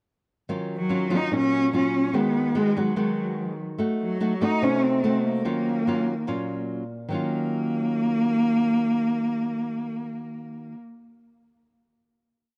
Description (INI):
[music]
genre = bossa nova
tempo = 146 BPM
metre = 4/4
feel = straight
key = Eb minor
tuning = A4 = 441 Hz
[part]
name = nylon-string guitar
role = accompaniment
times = 0.5-10.8 s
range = Bb2 to Gb4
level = -29 LUFS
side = equal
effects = none
[part]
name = warm cello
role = melody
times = 0.8-10.7 s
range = Gb3 to Eb4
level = -27 LUFS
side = equal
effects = none
[sound]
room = light reverb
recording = none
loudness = -25 LUFS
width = mono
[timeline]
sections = 0.5-7.1 A section; 7.1-10.4 final chord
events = none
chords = 0.5 Ebm9; 2.1 Abm7/Eb; 3.8 Cdim7; 5.4 Ebm9